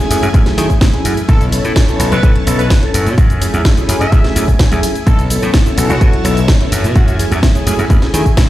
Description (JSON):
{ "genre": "filtered disco house", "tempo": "127 BPM", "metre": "4/4", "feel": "straight", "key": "F# minor", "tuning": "A4 = 440 Hz", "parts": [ { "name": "tine electric piano", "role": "accompaniment", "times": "0.0-8.3 s", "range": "F#3 to A4", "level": "-19 LUFS", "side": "left 1 dB", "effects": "phaser, sidechain pumping" }, { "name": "string machine, full ensemble", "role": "sustained chords", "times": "0.0-8.5 s", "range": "A3 to A5", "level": "-23 LUFS", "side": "right 1 dB", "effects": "phaser, ensemble chorus, sidechain pumping" }, { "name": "house drum kit", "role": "drums", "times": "0.0-8.5 s", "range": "hi-hat, shaker, snare drum", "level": "-20 LUFS", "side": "equal", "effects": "sidechain pumping on hats, sidechain pumping on cymbals, sidechain pumping on perc" }, { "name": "slap bass", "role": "bass", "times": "0.1-8.4 s", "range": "B1 to D#3", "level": "-16 LUFS", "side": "equal", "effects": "sidechain pumping" }, { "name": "electronic kick drum", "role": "drums", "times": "0.3-8.5 s", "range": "none", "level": "-11 LUFS", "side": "equal", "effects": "none" }, { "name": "clear horn section", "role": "melody", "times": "1.3-7.2 s", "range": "F#4 to E5", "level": "-24 LUFS", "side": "equal", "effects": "sidechain pumping, dub echo" } ], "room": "light reverb, digital ambience", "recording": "played on a big sound system in a bare room, large studio reverb", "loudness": "-10 LUFS", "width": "side -14 dB against mid", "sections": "0.0-8.5 A section", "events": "none", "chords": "0.0 F#m9; 1.3 B9sus4; 3.2 F#m9; 5.1 B9sus4; 7.0 F#m9" }